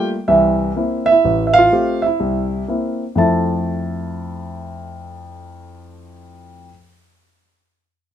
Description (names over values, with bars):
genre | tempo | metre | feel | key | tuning
solo jazz | 125 BPM | 4/4 | swing 68% on 8ths | F major | A4 = 440 Hz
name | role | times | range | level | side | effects
warm concert grand piano | solo | 0.0-6.7 s | A1 to A5 | -16 LUFS | right 1 dB | none
room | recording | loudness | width
light reverb | minimal, uncompressed stereo recording | -14 LUFS | side -10 dB against mid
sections
0.0-3.2 A section; 3.2-7.0 B section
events
none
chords
0.3 C7; 1.2 Am7; 2.2 C7; 3.2 Fmaj7